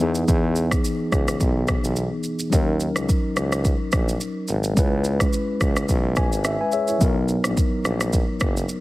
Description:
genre	afrobeats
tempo	107 BPM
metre	4/4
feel	swing 55% on 16ths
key	unclear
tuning	A4 = 440 Hz
part	mellow tine electric piano	accompaniment	0.0-8.8 s	E3 to G#5	-24 LUFS	left 1 dB	slow stereo tremolo
part	clear tuba	bass	0.0-8.6 s	F#1 to E2	-24 LUFS	equal	none
part	afro-pop drum kit	drums	0.1-8.8 s	kick drum, rim click, shaker	-22 LUFS	equal	none
room	digital ambience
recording	heavily compressed radio sound, multiband compression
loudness	-19 LUFS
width	side -18 dB against mid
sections	0.0-8.8 A section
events	tine electric piano fill 5.9-7.0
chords	0.0 Emaj7; 2.5 D#m7; 4.8 C#m7; 7.0 Bmaj7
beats	| 0.28 0.84 1.40 1.96 | 2.52 3.09 3.65 4.21 | 4.77 5.33 5.89 6.45 | 7.01 7.57 8.13 8.69

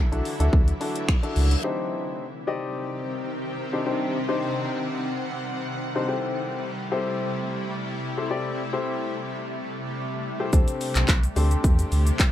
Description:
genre	dance-pop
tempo	108 BPM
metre	4/4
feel	straight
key	unclear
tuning	A4 = 437 Hz
part	shimmering ambient pad	sustained chords	0.0-12.3 s	C3 to F#5	-30 LUFS	equal	chorus, built-in reverb, sidechain pumping
part	warm grand piano	accompaniment	0.1-12.2 s	C4 to Eb5	-28 LUFS	left 4 dB	sidechain pumping
part	sub bass with octave	bass	0.1-1.6, 10.5-12.1 s	B1 to E2	-21 LUFS	equal	sidechain pumping
part	house drum kit	drums	0.1-1.6, 10.5-12.3 s	finger snaps, handclaps, hi-hat, kick drum, shaker	-21 LUFS	equal	none
part	reverse cymbal	sound effects	0.8-1.6 s	none	-35 LUFS	left 5 dB	none
room	little or no reverb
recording	dark, warm production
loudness	-23 LUFS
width	side -12 dB against mid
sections	0.0-1.6 A section; 1.6-12.3 B section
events	reverse cymbal 0.8-1.6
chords	0.0 Dadd9; 1.6 Cmadd9; 6.1 Am7; 10.5 D7sus4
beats	0.53 1.08 | 1.64 2.19 2.75 3.31 | 3.86 4.42 4.97 5.53 | 6.08 6.64 7.20 7.75 | 8.31 8.86 9.42 9.97 | 10.53 11.08 11.64 12.20

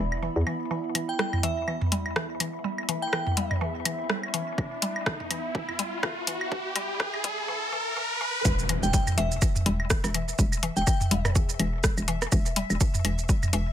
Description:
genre	minimal techno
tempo	124 BPM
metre	4/4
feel	swing 57% on 16ths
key	E minor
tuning	A4 = 440 Hz
part	mallet-like synth pluck	riff	0.0-13.6 s	E3 to G3	-34 LUFS	left 2 dB	chorus, sidechain pumping, ping-pong delay
part	hollow knocking FM bass	bass	0.0-0.4, 8.5-13.7 s	E1 to E2	-28 LUFS	equal	sidechain pumping
part	pulsing gated texture	texture	0.0-0.7, 8.8-13.7 s	E5	-41 LUFS	left 1 dB	chorus, built-in reverb, sidechain pumping
part	warbly tape-like pad	texture	0.0-7.5 s	B3 to B5	-35 LUFS	right 1 dB	chorus, built-in reverb, sidechain pumping
part	booming analog drum machine	percussion	0.1-13.5 s	claves, rim click, toms	-30 LUFS	right 1 dB	overdrive, digital delay
part	riser and impact	sound effects	2.5-10.4 s	none	-32 LUFS	equal	none
part	punchy analog drum machine	drums	0.9-13.6 s	hi-hat, rim click, shaker	-28 LUFS	left 1 dB	overdrive, high-pass filter on hats, high-pass filter on snare, high-pass filter on perc
part	glassy synth bell	melody	1.1-3.5, 8.8-11.2 s	E5 to G5	-32 LUFS	equal	chorus, digital delay
part	electronic kick drum	drums	4.6-13.4 s	none	-25 LUFS	equal	overdrive
room	light reverb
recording	high-pass filter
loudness	-24 LUFS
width	side -11 dB against mid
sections	0.7-8.5 A section; 8.5-13.7 B section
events	build-up 0.7-8.5; filter sweep on synth arpeggio sound 0.7-8.5; filter sweep 0.7-8.5; riser 2.5-8.5; drop 8.5-13.7; impact 8.5-10.4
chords	0.0 E5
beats	0.23 | 0.71 1.19 1.68 2.16 | 2.64 3.13 3.61 4.10 | 4.58 5.06 5.55 6.03 | 6.51 7.00 7.48 7.97 | 8.45 8.94 9.42 9.90 | 10.39 10.87 11.35 11.84 | 12.32 12.81 13.29

